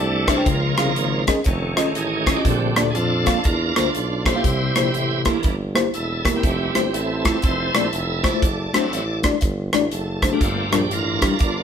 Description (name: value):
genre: uptempo gospel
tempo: 121 BPM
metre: 4/4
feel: swing 64% on 8ths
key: F major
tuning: A4 = 440 Hz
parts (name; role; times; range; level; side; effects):
- bright tonewheel organ; sustained chords; 0.0-11.6 s; D3 to D5; -24 LUFS; right 3 dB; slow rotary speaker, chorus vibrato
- warm tuba; bass; 0.0-11.6 s; E1 to F2; -26 LUFS; right 1 dB; none
- mellow tine electric piano; accompaniment; 0.3-11.3 s; G2 to G5; -23 LUFS; left 3 dB; fast stereo tremolo
- modern studio drum kit; drums; 0.3-11.5 s; hi-hat, kick drum, rim click; -22 LUFS; equal; none
room: moderate stone room reverb, RT60 1.2 s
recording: band playing live in one room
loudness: -18 LUFS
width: side -8 dB against mid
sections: 0.0-11.6 A section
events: tonewheel organ solo 0.0-11.6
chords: 0.5 Db6; 1.5 Faug7; 2.5 Bbmaj7; 4.4 C7; 6.4 Fmaj7; 8.4 D7/F#; 10.4 Gm7